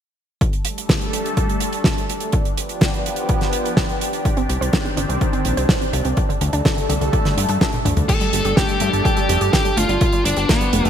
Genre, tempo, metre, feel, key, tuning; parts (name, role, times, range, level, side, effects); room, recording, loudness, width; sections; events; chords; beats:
italo disco; 125 BPM; 4/4; straight; A4 = 437 Hz
lush unison pad; sustained chords; 0.7-10.9 s; Eb3 to A4; -24 LUFS; equal; chorus, phaser
damped 70s drum kit; drums; 0.4-10.9 s; crash cymbal, hi-hat, snare drum, toms; -22 LUFS; right 1 dB
electronic kick drum; drums; 0.4-10.6 s; -21 LUFS; equal
wide unison pluck; arpeggios; 4.4-10.9 s; D3 to C5; -26 LUFS; right 2 dB; ping-pong delay
fat analog bass; bass; 4.5-10.9 s; F1 to G2; -22 LUFS; equal
smooth overdriven lead guitar; melody; 8.1-10.9 s; B3 to A4; -20 LUFS; equal; vintage 12-bit sampler grit, ping-pong delay
moderate lush hall reverb, RT60 2.2 s; bright 1980s-style digital production; -16 LUFS; side -9 dB against mid
0.4-8.1 A section; 8.1-10.9 B section
drum fill 7.7-8.1
0.4 Gsus2; 2.3 G7; 4.3 Cmadd9; 6.2 Dsus4; 8.1 Gsus2; 10.0 G7
| 0.41 0.89 1.37 1.85 | 2.33 2.81 3.29 3.77 | 4.25 4.73 5.21 5.69 | 6.17 6.65 7.13 7.61 | 8.09 8.57 9.05 9.53 | 10.01 10.49